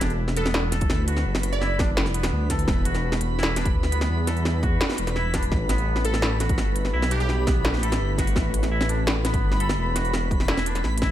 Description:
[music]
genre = half-time drum and bass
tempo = 169 BPM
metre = 4/4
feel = half-time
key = E minor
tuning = A4 = 441 Hz
[part]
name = deep dark ambient pad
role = sustained chords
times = 0.0-11.1 s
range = G3 to B4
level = -34 LUFS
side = left 1 dB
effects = chorus, built-in reverb, vintage 12-bit sampler grit, sidechain pumping
[part]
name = twangy electric guitar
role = arpeggios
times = 0.0-11.1 s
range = B3 to A4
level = -32 LUFS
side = right 1 dB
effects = vintage 12-bit sampler grit, digital delay
[part]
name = dark detuned saw bass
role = bass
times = 0.0-11.1 s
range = E1 to E2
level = -25 LUFS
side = equal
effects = none
[part]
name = industrial drum kit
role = drums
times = 0.0-11.1 s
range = hi-hat, snare drum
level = -27 LUFS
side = equal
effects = small room ambience
[part]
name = backwards swelling texture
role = texture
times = 0.9-11.1 s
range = B5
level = -35 LUFS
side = equal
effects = built-in reverb
[part]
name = glassy wavetable pluck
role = melody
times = 0.4-1.9, 6.0-7.6 s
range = G4 to D5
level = -32 LUFS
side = right 3 dB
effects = chorus, digital delay
[part]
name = electronic kick drum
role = drums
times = 0.8-11.1 s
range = none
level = -25 LUFS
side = equal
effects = small room ambience
[sound]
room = light reverb, digital ambience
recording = none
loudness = -21 LUFS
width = side -12 dB against mid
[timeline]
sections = 0.0-11.1 A section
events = none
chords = 0.0 Em

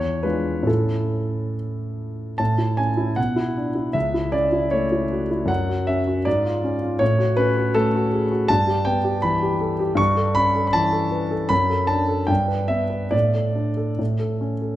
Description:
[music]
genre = classical, romantic character piece for solo piano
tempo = 68-81 BPM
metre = 2/4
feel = rubato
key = A major, D major from 8.5 s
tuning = A4 = 440 Hz
[part]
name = warm concert grand piano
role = solo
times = 0.0-14.8 s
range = C#2 to C#6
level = -19 LUFS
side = equal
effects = none
[sound]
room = moderate recital hall reverb, RT60 1.7 s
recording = none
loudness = -19 LUFS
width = side -14 dB against mid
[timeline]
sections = 0.0-2.4 A section; 2.4-14.8 B section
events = none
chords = 0.0 E7b9; 0.7 A; 3.2 E5/B; 3.9 A/C#; 5.5 F#5; 6.3 C#/G#; 7.0 F#m/A; 8.5 Em/G; 10.0 A7/G; 11.5 D/F#; 12.3 Em/G; 13.1 D5/A; 14.0 A

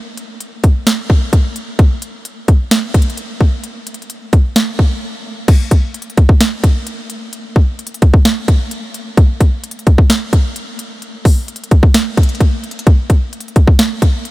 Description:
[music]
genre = hip hop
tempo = 130 BPM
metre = 4/4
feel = half-time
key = none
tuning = none
[part]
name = trap drum kit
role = drums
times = 0.2-14.3 s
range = crash cymbal, hi-hat, kick drum, snare drum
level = -11 LUFS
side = equal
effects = none
[sound]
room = little or no reverb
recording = none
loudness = -11 LUFS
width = side -18 dB against mid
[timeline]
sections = 0.0-5.5 A section; 5.5-14.3 B section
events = break 5.0-5.5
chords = none

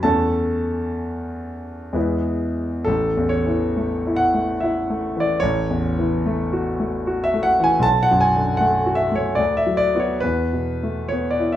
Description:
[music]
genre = classical, romantic nocturne for solo piano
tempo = 60-80 BPM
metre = 3/4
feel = rubato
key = A major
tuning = A4 = 440 Hz
[part]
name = clear concert grand piano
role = solo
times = 0.0-11.6 s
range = A1 to A5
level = -18 LUFS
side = equal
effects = none
[sound]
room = moderate large studio reverb, RT60 0.9 s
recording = heard from further back in the room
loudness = -18 LUFS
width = side -12 dB against mid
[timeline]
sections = 0.0-2.9 A section; 2.9-11.6 B section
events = none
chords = 0.1 A/E; 2.0 E; 2.9 A; 5.4 F#m7/A; 7.9 Bm7; 9.4 Bm/D; 10.2 Esus4

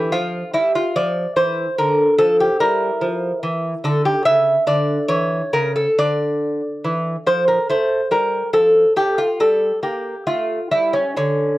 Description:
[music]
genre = classical, baroque-style dance for lute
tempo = 71 BPM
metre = 4/4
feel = uneven beats, rubato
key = D minor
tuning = A4 = 440 Hz
[part]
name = lute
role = solo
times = 0.0-11.6 s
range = C#3 to E5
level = -16 LUFS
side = equal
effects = none
[sound]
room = moderate studio reverb, RT60 0.5 s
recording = cassette tape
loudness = -16 LUFS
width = side -17 dB against mid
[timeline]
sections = 0.0-11.6 A section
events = none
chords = 0.0 N.C.; 1.0 Dm; 2.6 Edim; 4.3 Aadd11/C#; 6.0 Dmadd9; 7.7 F; 9.4 Gm; 10.3 A7b13

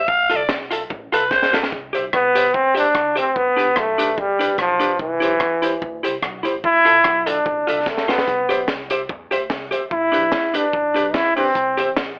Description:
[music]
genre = ska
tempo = 146 BPM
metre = 4/4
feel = swing 55% on 8ths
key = C major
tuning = A4 = 445 Hz
[part]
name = raspy alto saxophone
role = melody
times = 0.0-1.5 s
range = B4 to F5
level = -19 LUFS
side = equal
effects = none
[part]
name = upright bass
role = bass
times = 0.0-12.2 s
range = G1 to E2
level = -42 LUFS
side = equal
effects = none
[part]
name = crunchy breakbeat drum kit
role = drums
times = 0.1-12.1 s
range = hi-hat, kick drum, rim click, snare drum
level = -28 LUFS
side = equal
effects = none
[part]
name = vintage hollow-body jazz guitar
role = accompaniment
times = 0.3-11.9 s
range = D4 to E5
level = -25 LUFS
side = equal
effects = none
[part]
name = bright trombone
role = melody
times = 2.1-11.9 s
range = E3 to E4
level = -19 LUFS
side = equal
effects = slapback echo
[sound]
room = moderate studio ambience, RT60 0.5 s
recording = telephone sound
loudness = -19 LUFS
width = mono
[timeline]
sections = 0.0-1.7 A section; 1.7-12.2 A section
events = alto saxophone solo 0.0-1.7; drum fill 1.3-1.7, 7.9-8.3; trombone solo 1.7-12.2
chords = 0.1 Dmadd9; 1.7 C; 3.4 G; 5.0 C; 6.6 Dmadd9; 8.3 C; 9.9 G; 11.6 C

